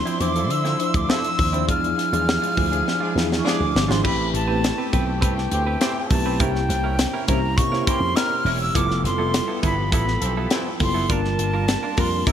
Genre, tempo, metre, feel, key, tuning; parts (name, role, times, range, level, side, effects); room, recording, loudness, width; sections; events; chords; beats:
polished 1980s jazz-funk pop; 102 BPM; 4/4; straight; A minor; A4 = 440 Hz
silver concert flute; melody; 0.0-12.3 s; G5 to F6; -25 LUFS; equal
mellow tine electric piano; accompaniment; 0.0-12.3 s; F3 to C5; -26 LUFS; left 1 dB; medium stereo tremolo, wide subtle chorus
warm studio string section; sustained chords; 0.0-12.3 s; C3 to C6; -34 LUFS; left 1 dB
semi-hollow electric guitar; riff; 0.1-12.3 s; F3 to C5; -32 LUFS; right 8 dB; lush chorus
tight funk drum kit; drums; 0.1-12.3 s; crash cymbal, hi-hat, kick drum, snare drum; -24 LUFS; left 1 dB
slap bass with an envelope filter; bass; 0.2-12.3 s; E1 to D3; -24 LUFS; equal
warm horn section; second line; 0.3-10.7 s; E3 to Bb4; -33 LUFS; equal; digital delay
light reverb, small room ambience; bright 1980s-style digital production; -19 LUFS; side -9 dB against mid
0.0-4.0 A section; 4.0-12.3 B section
drum fill 2.9-4.0
0.0 Dm9; 1.7 E7b9; 4.0 Am9; 6.4 C7b9; 8.8 Fmaj9#11; 11.1 Gm7
0.50 1.09 | 1.68 2.27 2.86 3.45 | 4.04 4.63 5.22 5.81 | 6.40 6.99 7.58 8.16 | 8.75 9.34 9.93 10.51 | 11.10 11.69 12.28